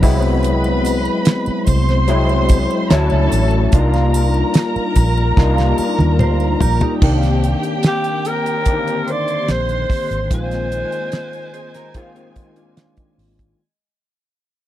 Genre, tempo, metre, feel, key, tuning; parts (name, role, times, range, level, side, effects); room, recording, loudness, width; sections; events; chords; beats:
lush 1970s-style soul; 73 BPM; 4/4; straight; C minor; A4 = 440 Hz
warm studio violin section; second line; 0.0-13.6 s; Ab3 to C6; -24 LUFS; right 1 dB
overdriven tine electric piano; accompaniment; 0.0-13.6 s; D3 to G4; -20 LUFS; left 2 dB; ensemble chorus
vintage muted fingered electric bass; bass; 0.0-13.5 s; Ab1 to Eb2; -17 LUFS; equal
damped 70s drum kit; drums; 0.0-13.6 s; crash cymbal, hi-hat, kick drum, snare drum, toms; -15 LUFS; equal
triangle; percussion; 0.0-7.0 s; -36 LUFS; right 4 dB
mellow electric guitar; riff; 6.2-13.6 s; D4 to C5; -25 LUFS; right 6 dB
growling alto saxophone; melody; 7.9-13.2 s; G4 to D5; -22 LUFS; equal
little or no reverb; dry, close 1970s-style studio recording; -14 LUFS; side -13 dB against mid
0.0-7.0 A section; 7.0-13.6 B section
drum fill 5.4-7.0; fade-out 7.0-13.6
0.0 Ab7alt/C; 2.9 Dmaj7; 3.7 Cm11; 7.0 Cm9; 10.3 Bb9sus4
| 0.44 1.26 2.09 2.91 | 3.73 4.55 5.37 6.20 | 7.02 7.84 8.66 9.48 | 10.30 11.12 11.95 12.77